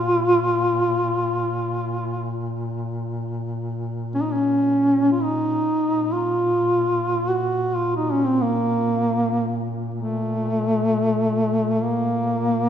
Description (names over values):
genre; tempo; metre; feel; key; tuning
caucasian folk, Caucasian lament; free time; none; none; Bb harmonic minor; A4 = 440 Hz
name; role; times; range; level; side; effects
mellow duduk; melody; 0.0-12.7 s; A3 to Gb4; -20 LUFS; equal; none
dark duduk; drone; 0.0-12.7 s; Bb2; -28 LUFS; equal; none
room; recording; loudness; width
wet church reverb, RT60 3.4 s; minimal, uncompressed stereo recording; -20 LUFS; side -9 dB against mid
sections
0.0-12.7 A section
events
none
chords
none